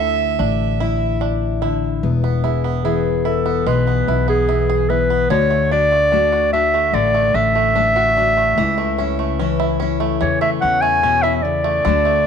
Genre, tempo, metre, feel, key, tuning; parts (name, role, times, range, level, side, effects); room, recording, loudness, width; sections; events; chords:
acoustic folk duo or small band; 73 BPM; 4/4; straight; E mixolydian; A4 = 440 Hz
rich fiddle; second line; 0.0-1.2 s; E5; -22 LUFS; right 12 dB
fingerpicked steel-string acoustic guitar; accompaniment; 0.0-12.3 s; E2 to G#4; -22 LUFS; left 13 dB
bluegrass banjo; arpeggios; 0.0-12.3 s; D3 to A4; -24 LUFS; right 10 dB
upright bass; bass; 0.0-12.3 s; E1 to E2; -22 LUFS; left 1 dB
clear clarinet; melody; 2.8-12.3 s; G#4 to G#5; -16 LUFS; equal
light reverb, small room ambience; 1960s-style stereo with parts hard left and right; -15 LUFS; side -7 dB against mid
0.0-2.0 A section; 2.0-12.3 B section
fiddle solo 0.0-2.0; clarinet solo 2.0-12.3
0.0 Dadd9; 2.0 E; 5.3 D; 8.6 A/C#